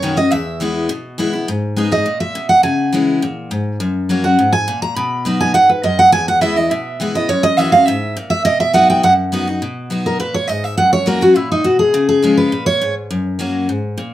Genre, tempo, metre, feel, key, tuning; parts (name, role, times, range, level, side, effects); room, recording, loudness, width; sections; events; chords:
bluegrass; 206 BPM; 4/4; straight; B major; A4 = 440 Hz
picked steel-string acoustic guitar; melody; 0.0-12.9 s; D#4 to B5; -13 LUFS; right 1 dB
picked steel-string acoustic guitar; accompaniment; 0.0-14.1 s; E2 to G#4; -18 LUFS; left 2 dB
wet studio reverb, RT60 0.5 s; -13 LUFS; side -13 dB against mid
0.0-9.6 A section; 9.6-14.1 B section
steel-string acoustic guitar solo 0.0-9.6
0.3 E; 1.5 G#m; 2.6 C#m; 3.8 F#; 5.0 B; 6.1 E; 7.3 F#7; 8.5 B; 10.8 F#; 11.9 C#; 13.1 F#